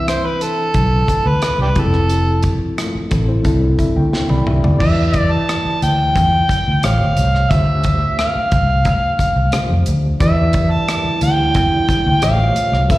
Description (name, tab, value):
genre	lush 1970s-style soul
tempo	89 BPM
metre	4/4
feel	straight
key	unclear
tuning	A4 = 440 Hz
part	overdriven harmonica	melody	0.0-13.0 s	D4 to A5	-18 LUFS	equal	slapback echo
part	reed electric piano	accompaniment	0.0-13.0 s	C3 to B5	-22 LUFS	left 2 dB	overdrive, fast tremolo, slapback echo
part	modern studio drum kit	drums	0.1-13.0 s	crash cymbal, hi-hat, kick drum, rim click, snare drum, toms	-20 LUFS	equal	none
part	vintage muted fingered electric bass	bass	0.8-13.0 s	F1 to F2	-16 LUFS	equal	none
part	dark French horn section	sustained chords	10.2-13.0 s	C3 to E#4	-23 LUFS	right 1 dB	none
room	little or no reverb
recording	live gig heard through the venue's PA, recital hall reverb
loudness	-13 LUFS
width	side -17 dB against mid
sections	0.0-4.8 A section; 4.8-13.0 B section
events	reed electric piano fill 3.5-4.8; drum fill 4.1-4.8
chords	0.0 Cmaj7; 1.8 Fmaj7; 3.5 C69; 4.8 Em7; 6.8 A7alt; 7.5 Dm11; 10.2 Em7; 12.2 A7alt